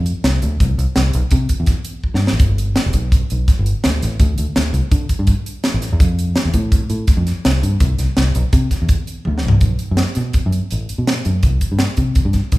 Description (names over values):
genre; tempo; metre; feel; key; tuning
math rock and midwest emo; 166 BPM; 5/4; straight; unclear; A4 = 441 Hz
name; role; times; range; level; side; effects
fingered electric bass; bass; 0.0-12.6 s; E1 to D3; -18 LUFS; equal; none
crisp fusion drum kit; drums; 0.1-12.6 s; hi-hat, kick drum, snare drum, toms; -17 LUFS; equal; none
room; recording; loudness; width
light reverb; none; -14 LUFS; side -19 dB against mid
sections
0.0-9.6 A section; 9.6-12.6 B section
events
drum fill 2.0-2.4, 9.3-9.6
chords
none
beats
0.25 | 0.61 0.96 1.32 1.68 2.04 | 2.40 2.76 3.12 3.48 3.84 | 4.20 4.56 4.92 5.28 5.64 | 6.00 6.37 6.73 7.09 7.45 | 7.81 8.17 8.54 8.90 9.26 | 9.62 9.99 10.35 10.72 11.08 | 11.45 11.81 12.18 12.54